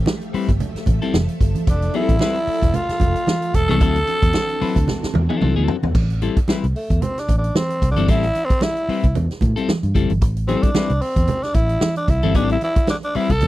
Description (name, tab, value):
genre	funk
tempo	112 BPM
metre	4/4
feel	swing 56% on 16ths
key	A minor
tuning	A4 = 441 Hz
part	string machine, violins	sustained chords	0.0-5.9 s	E3 to E5	-31 LUFS	equal	ensemble chorus
part	vintage muted fingered electric bass	bass	0.0-13.5 s	E1 to A2	-20 LUFS	equal	none
part	swinging big-band drum kit	drums	0.1-13.5 s	crash cymbal, hi-hat, kick drum, snare drum, toms	-20 LUFS	equal	none
part	congas	percussion	0.1-13.5 s	none	-26 LUFS	right 3 dB	none
part	clean electric guitar	accompaniment	0.3-13.3 s	F#3 to B4	-21 LUFS	left 6 dB	phaser
part	growling tenor saxophone	melody	1.7-13.5 s	A3 to A4	-22 LUFS	equal	none
room	little or no reverb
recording	dry, close 1970s-style studio recording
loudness	-16 LUFS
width	side -16 dB against mid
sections	0.0-5.9 A section; 5.9-13.5 B section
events	drum fill 4.9-5.9; tenor saxophone solo 5.9-13.5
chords	0.0 Fmaj9; 3.8 D9; 5.9 Am7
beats	0.07 0.61 1.14 | 1.68 2.21 2.75 3.28 | 3.81 4.35 4.88 5.42 | 5.95 6.48 7.02 7.55 | 8.09 8.62 9.15 9.69 | 10.22 10.75 11.29 11.82 | 12.35 12.88 13.42